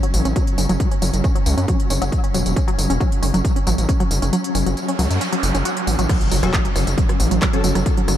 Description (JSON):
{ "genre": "driving peak-time techno", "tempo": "136 BPM", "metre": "4/4", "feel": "straight", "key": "F# minor", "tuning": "A4 = 440 Hz", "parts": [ { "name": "tight sequenced synth", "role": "riff", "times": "0.0-8.1 s", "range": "F#3 to F#4", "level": "-24 LUFS", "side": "right 1 dB", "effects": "chorus, sidechain pumping, tape echo" }, { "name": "swarming drone", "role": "drone", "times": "0.0-8.2 s", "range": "F#3 to C#4", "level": "-27 LUFS", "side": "left 1 dB", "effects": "built-in reverb, wide subtle chorus, sidechain pumping" }, { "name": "techno drum kit", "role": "drums", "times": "0.0-8.2 s", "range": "crash cymbal, handclaps, hi-hat, rim click, tambourine", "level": "-27 LUFS", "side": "equal", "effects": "sidechain pumping on hats, sidechain pumping on perc, sidechain pumping on cymbals" }, { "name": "gritty driven synth bass", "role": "bass", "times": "0.1-8.2 s", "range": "E1 to F#2", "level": "-20 LUFS", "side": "equal", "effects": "sidechain pumping" }, { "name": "electronic kick drum", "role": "drums", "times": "0.4-8.0 s", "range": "none", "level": "-19 LUFS", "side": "equal", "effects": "none" }, { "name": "noise sweep and impact", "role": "sound effects", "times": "4.6-7.9 s", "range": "none", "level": "-28 LUFS", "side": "right 1 dB", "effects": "none" }, { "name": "rave stab", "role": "stabs", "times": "6.4-8.2 s", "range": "F#3 to A4", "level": "-25 LUFS", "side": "left 2 dB", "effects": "chorus, built-in reverb, sidechain pumping, ping-pong delay" } ], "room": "light reverb, digital ambience", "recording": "none", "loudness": "-16 LUFS", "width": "side -11 dB against mid", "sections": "0.0-6.1 A section; 6.1-8.2 B section", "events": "filter sweep on synth arpeggio sound 0.0-6.1; kick drops out 4.3-6.1; noise sweep 4.6-6.1; drop 6.1-8.2; impact 6.1-7.9", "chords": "0.0 F#5; 6.1 F#m" }